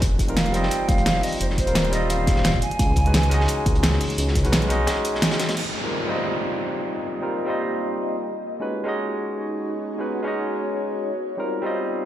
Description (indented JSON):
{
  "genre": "liquid drum and bass",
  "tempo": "173 BPM",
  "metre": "4/4",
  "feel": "straight",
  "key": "F minor",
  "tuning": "A4 = 442 Hz",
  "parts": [
    { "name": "barky tine electric piano", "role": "accompaniment", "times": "0.0-12.1 s", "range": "G3 to Eb5", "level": "-26 LUFS", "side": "equal", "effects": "dub echo" },
    { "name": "dark detuned saw bass", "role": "bass", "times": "0.0-4.9 s", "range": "Eb1 to Db2", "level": "-22 LUFS", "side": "equal", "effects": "none" },
    { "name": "crunchy breakbeat drum kit", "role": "drums", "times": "0.0-5.6 s", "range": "hi-hat, snare drum", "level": "-30 LUFS", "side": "equal", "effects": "high-pass filter on hats, high-pass filter on snare, high-pass filter on room" },
    { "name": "electronic kick drum", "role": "drums", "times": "0.0-4.4 s", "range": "none", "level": "-22 LUFS", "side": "equal", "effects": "none" },
    { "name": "pop drum kit", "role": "drums", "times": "0.0-5.6 s", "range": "crash cymbal, hi-hat, snare drum", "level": "-25 LUFS", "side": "right 1 dB", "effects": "none" },
    { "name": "mellow hollow silver concert flute", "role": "melody", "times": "0.4-4.0 s", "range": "C5 to Ab5", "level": "-27 LUFS", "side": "right 1 dB", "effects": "digital delay" },
    { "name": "ethereal airy pad", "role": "sustained chords", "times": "6.8-12.1 s", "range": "Bb3 to Eb5", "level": "-30 LUFS", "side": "left 1 dB", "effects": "ensemble chorus, built-in reverb, phaser, vintage 12-bit sampler grit, sidechain pumping" },
    { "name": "downlifter", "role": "sound effects", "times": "5.6-8.3 s", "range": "none", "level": "-30 LUFS", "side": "equal", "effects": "none" }
  ],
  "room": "moderate lush hall reverb, RT60 2.2 s",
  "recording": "played on a big sound system in a bare room, large studio reverb",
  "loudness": "-20 LUFS",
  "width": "side -12 dB against mid",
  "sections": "0.0-5.6 A section; 5.6-12.1 B section",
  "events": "band accent 5.2; filter sweep on ambient pad 5.6-12.1",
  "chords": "0.0 F9sus4; 2.6 Db9sus4; 5.6 F9sus4; 8.2 Db9sus4; 11.1 F9sus4"
}